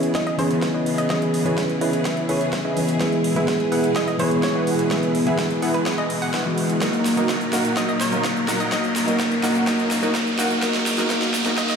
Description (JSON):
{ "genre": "EDM, festival progressive house", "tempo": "126 BPM", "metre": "4/4", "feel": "straight", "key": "unclear", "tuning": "A4 = 440 Hz", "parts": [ { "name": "felt-muted upright piano", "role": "accompaniment", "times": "0.0-11.8 s", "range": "E3 to B4", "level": "-22 LUFS", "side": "left 2 dB", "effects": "sidechain pumping, dub echo" }, { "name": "clear studio string section", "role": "sustained chords", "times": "0.0-11.8 s", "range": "A#2 to A#4", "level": "-30 LUFS", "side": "right 1 dB", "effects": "sidechain pumping" }, { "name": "supersaw stab", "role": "riff", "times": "0.0-11.8 s", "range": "A#3 to G#5", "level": "-25 LUFS", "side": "right 2 dB", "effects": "sidechain pumping, low-pass filter, dub echo" }, { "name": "big-room dance drum kit", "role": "drums", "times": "0.0-11.8 s", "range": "cabasa, hi-hat, snare drum", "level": "-28 LUFS", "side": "right 1 dB", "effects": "high-pass filter on hats, high-pass filter on snare, high-pass filter on perc, high-pass filter on room" }, { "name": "riser", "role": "sound effects", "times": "1.0-11.8 s", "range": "none", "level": "-30 LUFS", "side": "right 2 dB", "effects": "none" }, { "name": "hollow square pluck", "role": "melody", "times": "0.1-11.8 s", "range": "B4 to F#5", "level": "-29 LUFS", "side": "equal", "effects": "chorus, dub echo" }, { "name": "electronic kick drum", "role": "drums", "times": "0.1-11.7 s", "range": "none", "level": "-30 LUFS", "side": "right 2 dB", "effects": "overdrive, high-pass filter on kick" } ], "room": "wet recital hall reverb, RT60 1.4 s", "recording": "played on a big sound system in a bare room, stone room reverb, high-pass filter", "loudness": "-19 LUFS", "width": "side -6 dB against mid", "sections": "0.0-11.8 A section", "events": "build-up 0.0-11.8; drum fill 0.0-11.8; filter sweep on supersaw synth 0.0-11.8; filter sweep 0.0-11.8; riser 1.0-11.8", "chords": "0.0 C#m7; 3.0 E; 6.8 D#m; 10.6 G#m" }